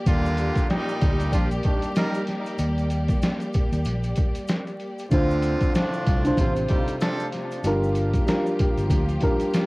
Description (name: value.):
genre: hip hop, boom-bap hip-hop.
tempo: 95 BPM.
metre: 4/4.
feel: swing 60% on 16ths.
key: unclear.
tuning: A4 = 440 Hz.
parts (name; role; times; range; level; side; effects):
warm studio string section; sustained chords; 0.0-9.7 s; C3 to D5; -31 LUFS; equal; high-pass filter, low-pass filter, cassette tape.
clear horn section; stabs; 0.1-7.3 s; A2 to Bb4; -30 LUFS; right 1 dB; high-pass filter, low-pass filter, cassette tape, analog delay.
fingered electric bass; bass; 0.1-9.2 s; G1 to Eb2; -25 LUFS; equal; transformer saturation.
trip hop sampler-style drum kit; drums; 0.1-9.7 s; hi-hat, kick drum, snare drum; -24 LUFS; equal; cassette tape.
tube shaker; percussion; 0.1-9.7 s; none; -54 LUFS; left 2 dB; none.
dark upright piano; accompaniment; 5.1-9.7 s; C3 to C5; -24 LUFS; equal; cassette tape, high-pass filter, low-pass filter.
room: studio ambience.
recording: home recording on cassette, vinyl crackle.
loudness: -21 LUFS.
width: side -23 dB against mid.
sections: 0.0-9.7 A section.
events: break 0.1-5.1.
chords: 0.1 Ebmaj7; 5.1 Dm7; 7.6 Gm7.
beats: | 0.06 0.69 1.32 1.96 | 2.59 3.22 3.85 4.48 | 5.12 5.75 6.38 7.01 | 7.64 8.27 8.90 9.54.